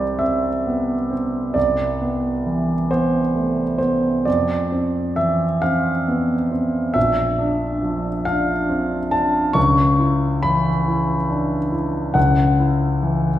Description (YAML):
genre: classical, impressionist solo piano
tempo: 45 BPM (dotted quarters)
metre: 6/8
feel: rubato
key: unclear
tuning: A4 = 444 Hz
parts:
  - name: clear concert grand piano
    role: solo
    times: 0.0-13.4 s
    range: Bb1 to C#6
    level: -17 LUFS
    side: equal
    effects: none
room: wet recital hall reverb, RT60 1.7 s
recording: recorded in a church or concert hall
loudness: -17 LUFS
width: side -12 dB against mid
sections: 0.0-13.4 A section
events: none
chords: 0.0 C; 1.6 Amadd9/C; 4.3 F5; 7.0 Bb; 9.6 C#m7; 12.2 A6/C# (rootless)